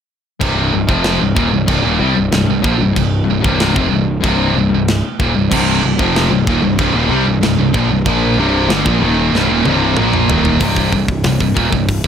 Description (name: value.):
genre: heavy metal.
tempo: 94 BPM.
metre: 4/4.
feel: straight.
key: C minor.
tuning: A4 = 440 Hz.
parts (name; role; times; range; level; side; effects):
distorted electric guitar; riff; 0.4-12.1 s; C2 to Bb3; -17 LUFS; left 8 dB; distortion.
scooped high-gain guitar; riff; 0.4-12.0 s; C2 to Bb3; -18 LUFS; right 10 dB; distortion.
fuzz picked electric bass; bass; 0.4-12.1 s; C1 to C2; -18 LUFS; equal; overdrive.
tight metal drum kit; drums; 0.4-12.1 s; china cymbal, crash cymbal, hi-hat, kick drum, snare drum, toms; -19 LUFS; right 1 dB; none.
thick fuzz guitar; riff; 5.5-10.6 s; C2 to Bb3; -18 LUFS; right 1 dB; distortion.
room: small room ambience.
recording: none.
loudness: -12 LUFS.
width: side -8 dB against mid.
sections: 0.4-10.6 A section; 10.6-12.1 B section.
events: drum fill 9.3-10.6.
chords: 0.4 Cm.